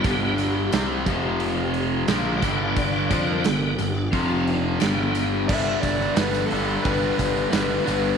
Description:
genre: classic rock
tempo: 88 BPM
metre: 4/4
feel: straight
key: G major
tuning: A4 = 439 Hz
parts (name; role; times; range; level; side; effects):
- tonewheel organ; sustained chords; 0.0-5.5 s; C3 to G5; -26 LUFS; equal; slow rotary speaker, overdrive, chorus vibrato
- crunchy overdriven guitar; riff; 0.0-8.2 s; F2 to F4; -26 LUFS; left 11 dB; none
- distorted electric guitar; riff; 0.0-8.2 s; F2 to F4; -28 LUFS; right 12 dB; distortion
- fuzz picked electric bass; bass; 0.0-8.1 s; F1 to F2; -28 LUFS; equal; overdrive
- big rock drum kit; drums; 0.0-8.0 s; crash cymbal, hi-hat, kick drum, snare drum; -28 LUFS; right 4 dB; none
- tambourine; percussion; 0.0-8.0 s; none; -42 LUFS; left 12 dB; none
- lead guitar through a small cranked amp; melody; 5.5-8.2 s; A4 to E5; -26 LUFS; left 2 dB; overdrive
room: moderate echo chamber reverb, RT60 2.0 s, small room ambience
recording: 1960s-style stereo with parts hard left and right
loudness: -20 LUFS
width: side -6 dB against mid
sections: 0.0-5.5 A section; 5.5-8.2 B section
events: tonewheel organ solo 0.0-5.5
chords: 0.0 G; 1.1 F5; 2.1 G; 4.1 F5; 4.8 G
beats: | 0.04 0.72 1.41 2.08 | 2.77 3.45 4.13 4.81 | 5.49 6.17 6.85 7.53

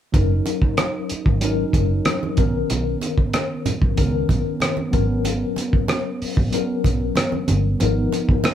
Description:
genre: lush 1970s-style soul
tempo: 94 BPM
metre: 4/4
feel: straight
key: F# major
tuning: A4 = 440 Hz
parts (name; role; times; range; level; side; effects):
- mellow tine electric piano; accompaniment; 0.1-8.5 s; D#3 to A#4; -23 LUFS; left 3 dB; medium stereo tremolo
- vintage muted fingered electric bass; bass; 0.1-8.1 s; F#1 to C#2; -22 LUFS; equal; none
- cloth-damped thuddy drum kit; drums; 0.1-8.5 s; hi-hat, kick drum, rim click; -21 LUFS; equal; none
- congas; percussion; 0.1-8.5 s; none; -28 LUFS; right 4 dB; none
room: light reverb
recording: band playing live in one room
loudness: -18 LUFS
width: side -10 dB against mid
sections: 0.1-8.5 A section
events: none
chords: 0.1 F#6; 2.4 Bmaj9; 4.9 G#m11; 7.8 C#13/G# (rootless)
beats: | 0.14 0.78 1.42 2.06 | 2.70 3.34 3.98 4.62 | 5.25 5.89 6.53 7.17 | 7.81 8.45

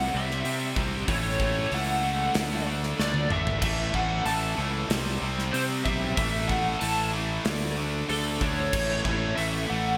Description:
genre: hard rock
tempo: 94 BPM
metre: 4/4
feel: straight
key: unclear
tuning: A4 = 440 Hz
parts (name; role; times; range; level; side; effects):
- lead guitar through a small cranked amp; melody; 0.0-10.0 s; A4 to A5; -33 LUFS; equal; overdrive, ensemble chorus
- tight distorted guitar; riff; 0.0-10.0 s; A2 to D4; -36 LUFS; equal; distortion
- tight distorted guitar; riff; 0.0-10.0 s; A2 to D4; -36 LUFS; equal; distortion
- fuzz fingered electric bass; bass; 0.0-10.0 s; G#1 to C3; -33 LUFS; equal; overdrive
- gated 80s drum kit; drums; 0.3-9.5 s; crash cymbal, hi-hat, kick drum, snare drum, toms; -34 LUFS; equal; gated reverb
- tight distorted guitar; riff; 3.6-10.0 s; A2 to D4; -38 LUFS; equal; none
room: moderate plate reverb, RT60 2.3 s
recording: bright 1980s-style digital production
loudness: -27 LUFS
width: mono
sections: 0.0-10.0 A section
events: drum fill 3.0-3.6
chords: 0.0 C; 1.1 A; 2.4 D5; 3.6 A; 4.9 C5; 6.2 A5; 7.5 D5; 8.7 A5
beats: 0.45 | 1.08 1.72 2.35 2.99 | 3.63 4.27 4.90 5.54 | 6.18 6.82 7.46 8.09 | 8.73 9.37

